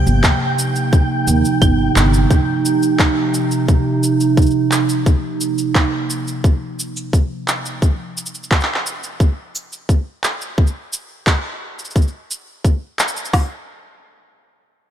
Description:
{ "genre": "folktronica", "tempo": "87 BPM", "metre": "4/4", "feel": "straight", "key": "unclear", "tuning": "A4 = 440 Hz", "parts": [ { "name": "warbly tape-like pad", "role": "sustained chords", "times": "0.0-7.8 s", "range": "C3 to Eb4", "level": "-18 LUFS", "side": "right 3 dB", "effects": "chorus, built-in reverb" }, { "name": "flickering grainy texture", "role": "texture", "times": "0.0-2.3 s", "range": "G5 to G6", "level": "-25 LUFS", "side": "equal", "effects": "built-in reverb, wide subtle chorus" }, { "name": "upright bass", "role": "bass", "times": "0.1-2.2 s", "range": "G1 to Eb2", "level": "-16 LUFS", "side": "equal", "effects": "none" }, { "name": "electronic shaker, handclaps and claves", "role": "drums", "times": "0.1-13.3 s", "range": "none", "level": "-22 LUFS", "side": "equal", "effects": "none" }, { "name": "organic electronic drum kit", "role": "drums", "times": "0.2-13.5 s", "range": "hi-hat, kick drum, snare drum", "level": "-14 LUFS", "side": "equal", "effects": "none" } ], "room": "moderate lush hall reverb, RT60 2.6 s", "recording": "dreamy mix soaked in reverb", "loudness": "-15 LUFS", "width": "side -10 dB against mid", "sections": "0.0-13.3 A section; 13.3-14.9 B section", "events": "none", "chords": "0.0 Cm; 2.3 Bbsus24/C; 7.8 N.C." }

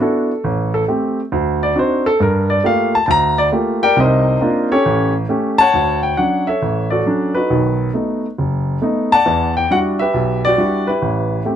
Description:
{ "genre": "solo jazz", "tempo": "136 BPM", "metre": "4/4", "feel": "swing 66% on 8ths", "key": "D major from 5.7 s", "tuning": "A4 = 440 Hz", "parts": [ { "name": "warm baby grand piano", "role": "solo", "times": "0.0-11.6 s", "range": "F#1 to Bb5", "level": "-14 LUFS", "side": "equal", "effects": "none" } ], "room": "light reverb", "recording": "close, detailed microphones", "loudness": "-14 LUFS", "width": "side -9 dB against mid", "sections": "0.0-5.7 A section; 5.7-11.6 B section", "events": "grand piano solo 0.0-5.7", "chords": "0.4 Am7; 1.3 D7b9; 2.2 Gm9; 4.0 Cm11; 4.9 A7; 5.7 Dmaj7; 7.5 B7; 9.3 Em9; 11.0 Am7" }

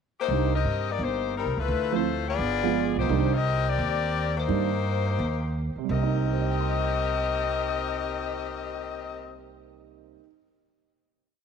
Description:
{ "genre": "jazz, big band swing", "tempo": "172 BPM", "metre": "4/4", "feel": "swing 63% on 8ths", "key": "C minor", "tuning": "A4 = 440 Hz", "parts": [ { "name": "bright saxophone section", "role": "melody", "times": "0.2-9.5 s", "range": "G3 to Eb5", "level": "-28 LUFS", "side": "left 9 dB", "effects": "none" }, { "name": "warm baby grand piano", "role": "accompaniment", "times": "0.3-10.4 s", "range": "C3 to G6", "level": "-31 LUFS", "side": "right 16 dB", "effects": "none" }, { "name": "upright bass", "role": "bass", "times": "0.3-10.1 s", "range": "G1 to G2", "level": "-28 LUFS", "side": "right 2 dB", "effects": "none" } ], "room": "light reverb, small room ambience", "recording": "1960s-style stereo with parts hard left and right", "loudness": "-24 LUFS", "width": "side -6 dB against mid", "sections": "0.0-0.3 pickup bar; 0.3-5.9 A section; 5.9-8.7 final chord", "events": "none", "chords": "0.3 Cm7; 1.7 Dm9; 2.4 G7b9; 3.1 Cm7" }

